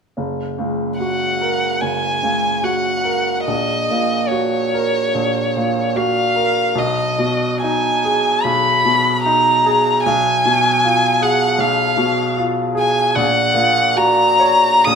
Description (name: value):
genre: classical, romantic duo for violin and grand piano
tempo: 74 BPM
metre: 4/4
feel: uneven beats, rubato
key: F# major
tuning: A4 = 440 Hz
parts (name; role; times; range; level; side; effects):
- bright grand piano; accompaniment; 0.2-15.0 s; F#1 to C#5; -18 LUFS; right 1 dB; none
- warm violin; melody; 1.0-15.0 s; C#5 to D#6; -16 LUFS; equal; none
room: wet stone room reverb, RT60 1.1 s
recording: minimal, uncompressed stereo recording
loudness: -14 LUFS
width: side -6 dB against mid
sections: 0.2-15.0 A section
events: none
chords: 0.2 F#; 3.5 F#/A#; 6.8 G#m/B; 10.0 Fdim/Cb; 13.2 F#/A#